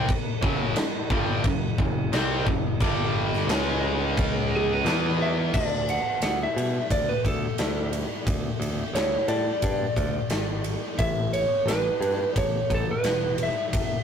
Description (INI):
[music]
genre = hard rock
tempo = 88 BPM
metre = 4/4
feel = straight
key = unclear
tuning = A4 = 440 Hz
[part]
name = tight distorted guitar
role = riff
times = 0.0-5.5 s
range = F#2 to E4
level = -26 LUFS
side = equal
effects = distortion
[part]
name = modern bright picked electric bass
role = bass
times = 0.0-14.0 s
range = E1 to B2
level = -29 LUFS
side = equal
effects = none
[part]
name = huge arena drum kit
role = drums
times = 0.1-13.9 s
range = crash cymbal, kick drum, ride cymbal, snare drum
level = -27 LUFS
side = left 1 dB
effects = none
[part]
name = lightly driven lead guitar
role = melody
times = 4.6-14.0 s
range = G#4 to F#5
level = -26 LUFS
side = right 1 dB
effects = slapback echo
[sound]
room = moderate booth ambience, RT60 0.2 s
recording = rough rehearsal-room recording, warm saturation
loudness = -23 LUFS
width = side -7 dB against mid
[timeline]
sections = 0.0-5.5 A section; 5.5-14.0 B section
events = none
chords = 0.0 F#5; 2.8 G5; 3.5 C#5; 4.9 E5; 5.5 D5; 11.0 A5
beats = | 0.08 0.77 1.45 2.13 | 2.81 3.49 4.17 4.85 | 5.53 6.22 6.90 7.58 | 8.26 8.95 9.63 10.31 | 11.00 11.68 12.37 13.05 | 13.73